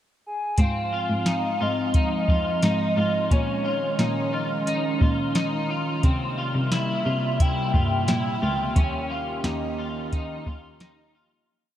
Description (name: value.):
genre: dream pop.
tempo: 88 BPM.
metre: 4/4.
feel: straight.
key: Eb mixolydian.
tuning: A4 = 440 Hz.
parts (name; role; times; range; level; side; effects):
hollow clarinet-like synth lead; melody; 0.3-11.1 s; Db5 to Ab5; -29 LUFS; equal; chorus, tape echo.
hollow soft pad; sustained chords; 0.6-11.5 s; C3 to E5; -28 LUFS; right 1 dB; chorus.
electric guitar at the edge of break-up; arpeggios; 0.6-11.5 s; C4 to F4; -30 LUFS; left 2 dB; ensemble chorus, tape echo.
rich cello; bass; 0.6-11.4 s; Db2 to C3; -29 LUFS; equal; none.
soft vintage rhythm box; drums; 0.6-11.0 s; hi-hat, kick drum, snare drum; -23 LUFS; equal; none.
room: wet huge ambient reverb, RT60 9.0 s.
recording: dreamy mix soaked in reverb.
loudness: -22 LUFS.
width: side -11 dB against mid.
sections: 0.0-0.6 pickup bar; 0.6-11.5 A section.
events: fade-out 8.8-11.5.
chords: 0.0 N.C.; 0.6 Ab6; 3.3 Eb7sus4/Bb; 6.0 C7; 8.8 Eb7.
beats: | 0.58 1.26 1.94 2.62 | 3.31 3.99 4.67 5.35 | 6.03 6.72 7.40 8.08 | 8.76 9.44 10.12 10.81.